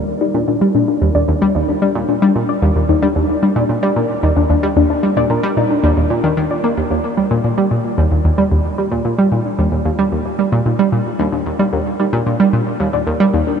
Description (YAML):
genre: ambient, sequencer-driven space music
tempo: 112 BPM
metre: 4/4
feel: straight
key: Eb major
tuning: A4 = 440 Hz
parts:
  - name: warbly dusty pluck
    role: arpeggios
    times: 0.0-13.6 s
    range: D4 to D5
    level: -19 LUFS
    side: moving between left 8 dB and right 1 dB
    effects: chorus, auto-pan, tape echo
  - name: analog pluck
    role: riff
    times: 0.0-13.4 s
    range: Eb2 to Bb3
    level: -14 LUFS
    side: right 1 dB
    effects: chorus, tape echo
room: wet huge ambient reverb, RT60 7.2 s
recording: dark, warm production, nothing above 10.5 kHz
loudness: -13 LUFS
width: side -7 dB against mid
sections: 0.0-6.9 A section; 6.9-13.6 B section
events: filter sweep on synth arpeggio sound 0.0-6.9; fade-in on synth arpeggio sound 6.9-13.6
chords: 0.0 Ebmaj7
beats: | 0.48 1.02 1.55 2.09 | 2.62 3.16 3.69 4.23 | 4.77 5.30 5.84 6.37 | 6.91 7.45 7.98 8.52 | 9.05 9.59 10.12 10.66 | 11.20 11.73 12.27 12.80 | 13.34